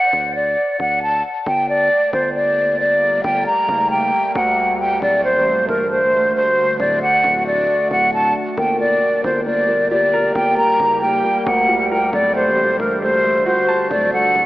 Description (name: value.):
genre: hip hop.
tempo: 135 BPM.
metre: 4/4.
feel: half-time.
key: G harmonic minor.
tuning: A4 = 437 Hz.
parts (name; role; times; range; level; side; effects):
breathy mellow silver concert flute; melody; 0.0-14.5 s; Bb4 to Bb5; -15 LUFS; equal; low-pass filter.
distorted 808-style bass; bass; 0.1-14.5 s; C1 to D2; -28 LUFS; equal; distortion.
deep dark ambient pad; sustained chords; 2.1-14.5 s; D3 to G4; -26 LUFS; equal; chorus, built-in reverb.
dark grand piano; accompaniment; 8.6-14.5 s; A3 to A5; -22 LUFS; equal; low-pass filter.
room: wet lush hall reverb, RT60 2.9 s.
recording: dreamy mix soaked in reverb, AM radio sound.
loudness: -14 LUFS.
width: side -16 dB against mid.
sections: 0.0-1.5 A section; 1.5-14.5 B section.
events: none.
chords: 0.0 D; 1.5 Gmadd9; 5.0 D; 8.6 Gm; 12.1 D.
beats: 0.13 0.58 1.02 | 1.47 1.91 2.35 2.80 | 3.24 3.69 4.13 4.58 | 5.02 5.46 5.91 6.35 | 6.80 7.24 7.69 8.13 | 8.58 9.02 9.46 9.91 | 10.35 10.80 11.24 11.69 | 12.13 12.58 13.02 13.46 | 13.91 14.35.